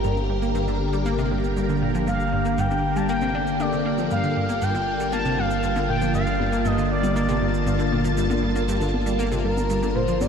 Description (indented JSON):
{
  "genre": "ambient, sequencer-driven space music",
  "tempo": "118 BPM",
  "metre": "4/4",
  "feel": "straight",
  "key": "G minor",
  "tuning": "A4 = 439 Hz",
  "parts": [
    { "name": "phased string machine", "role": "sustained chords", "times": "0.0-10.3 s", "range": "D3 to A5", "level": "-25 LUFS", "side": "equal", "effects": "ensemble chorus, phaser" },
    { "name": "analog pluck", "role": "riff", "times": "0.0-10.3 s", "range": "G2 to D4", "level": "-27 LUFS", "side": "equal", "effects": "chorus, ping-pong delay" },
    { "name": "warm sub bass", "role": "bass", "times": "0.0-10.3 s", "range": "G1", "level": "-28 LUFS", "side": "equal", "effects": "tube saturation" },
    { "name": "cabasa and congas", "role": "percussion", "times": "0.0-10.3 s", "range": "none", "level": "-36 LUFS", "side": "left 1 dB", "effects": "ping-pong delay" },
    { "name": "expressive synth lead", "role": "melody", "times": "2.1-10.3 s", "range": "Bb4 to A5", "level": "-28 LUFS", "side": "equal", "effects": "chorus, ping-pong delay" }
  ],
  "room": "wet huge ambient reverb, RT60 8.2 s",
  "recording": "dreamy mix soaked in reverb, cassette tape",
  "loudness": "-20 LUFS",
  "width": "side -7 dB against mid",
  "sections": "0.0-10.3 A section",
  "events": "fade-in on drum 0.0-10.3",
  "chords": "0.0 Gmadd9",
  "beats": "| 0.04 0.55 1.06 1.57 | 2.07 2.58 3.09 3.60 | 4.11 4.62 5.12 5.63 | 6.14 6.65 7.16 7.67 | 8.18 8.69 9.19 9.70 | 10.21"
}